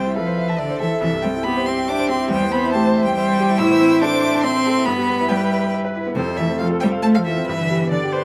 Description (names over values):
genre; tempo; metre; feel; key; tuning
quick classical-period movement for piano quartet; 140 BPM; 3/4; rubato; unclear; A4 = 440 Hz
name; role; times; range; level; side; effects
rich violin; melody; 0.0-8.2 s; C5 to E6; -27 LUFS; equal; none
warm cello; second line; 0.0-8.2 s; C3 to E4; -22 LUFS; equal; none
bright grand piano; accompaniment; 0.0-8.2 s; C2 to B5; -25 LUFS; equal; none
rich viola; accompaniment; 0.0-8.2 s; G4 to D5; -28 LUFS; equal; none
room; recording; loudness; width
light reverb; none; -19 LUFS; mono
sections
0.0-8.2 A section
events
none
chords
0.0 Am/C; 1.0 C; 2.3 C/E; 3.6 Am; 4.9 Em/G; 6.2 F; 7.5 G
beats
0.17 0.60 | 1.02 1.46 1.88 | 2.31 2.74 3.17 | 3.59 4.01 4.44 | 4.86 5.29 5.72 | 6.15 6.59 7.03 | 7.47 7.91